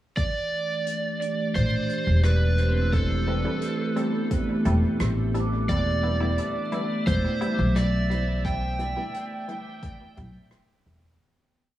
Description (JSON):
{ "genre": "ambient dub", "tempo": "87 BPM", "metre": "4/4", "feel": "straight", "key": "A minor", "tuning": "A4 = 440 Hz", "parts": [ { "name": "overdriven slide guitar", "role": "melody", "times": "0.2-10.5 s", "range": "A4 to G5", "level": "-30 LUFS", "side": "right 2 dB", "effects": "dub echo" }, { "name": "warbly tape-like pad", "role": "sustained chords", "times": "0.2-11.2 s", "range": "E3 to G4", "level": "-30 LUFS", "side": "right 1 dB", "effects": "chorus, built-in reverb" }, { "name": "electronic kick drum", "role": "drums", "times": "0.2-10.0 s", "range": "none", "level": "-28 LUFS", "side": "equal", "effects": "none" }, { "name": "soft brush drum kit", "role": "drums", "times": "0.2-11.0 s", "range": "hi-hat, rim click", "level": "-40 LUFS", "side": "left 1 dB", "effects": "none" }, { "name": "upright bass", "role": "bass", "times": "1.6-11.2 s", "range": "E1 to B1", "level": "-24 LUFS", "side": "equal", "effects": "none" }, { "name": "vibraphone with medium hard mallets", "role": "arpeggios", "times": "2.1-11.8 s", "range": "B3 to D6", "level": "-34 LUFS", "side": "right 2 dB", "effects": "low-pass filter, dub echo" }, { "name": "filtered dub chord stab", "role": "stabs", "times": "3.3-11.0 s", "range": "D3 to A4", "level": "-34 LUFS", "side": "left 1 dB", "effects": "chorus, dub echo" }, { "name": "drifting glass-harmonics texture", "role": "texture", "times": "6.4-11.2 s", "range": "E5", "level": "-40 LUFS", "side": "right 3 dB", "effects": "chorus, built-in reverb" } ], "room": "light reverb, small room ambience", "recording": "vinyl crackle", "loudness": "-22 LUFS", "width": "side -14 dB against mid", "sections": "0.2-11.2 groove", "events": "filter sweep on vibraphone 0.2-11.2; fade-out 7.5-11.2", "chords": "0.2 Am7; 5.7 Em7" }